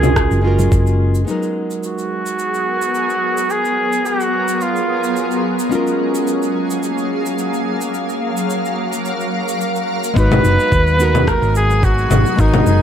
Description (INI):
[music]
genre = sunset chillout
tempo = 108 BPM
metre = 4/4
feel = swing 54% on 16ths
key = G# dorian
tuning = A4 = 440 Hz
[part]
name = clear flugelhorn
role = melody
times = 0.0-5.4, 10.2-12.8 s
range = D#4 to B4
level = -19 LUFS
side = equal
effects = ping-pong delay
[part]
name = nylon-string guitar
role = accompaniment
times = 0.0-12.8 s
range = F#3 to B4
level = -22 LUFS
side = moving between left 5 dB and right 5 dB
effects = auto-pan, ping-pong delay
[part]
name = hollow-body short-scale fingered electric bass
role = bass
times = 0.0-1.2, 10.2-12.8 s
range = F#1 to D#2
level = -15 LUFS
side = equal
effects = none
[part]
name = electronic congas, cabasa and rim click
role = drums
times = 0.0-12.8 s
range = none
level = -21 LUFS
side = left 2 dB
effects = none
[part]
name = electronic kick drum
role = drums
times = 0.2-0.8, 10.2-12.5 s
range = none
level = -16 LUFS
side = equal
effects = overdrive
[part]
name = congas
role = percussion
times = 0.6-0.7 s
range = none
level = -24 LUFS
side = left 2 dB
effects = none
[part]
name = shimmering ambient pad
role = sustained chords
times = 2.1-12.8 s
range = F#3 to E#5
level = -21 LUFS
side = equal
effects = chorus, built-in reverb
[sound]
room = light reverb, studio ambience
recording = none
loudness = -14 LUFS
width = side -9 dB against mid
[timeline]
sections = 0.0-1.3 A section; 1.3-10.2 B section; 10.2-12.8 C section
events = filter sweep on ambient pad 1.3-10.2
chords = 0.0 F#maj9; 1.3 G#m9; 5.7 F#maj9; 10.2 G#m9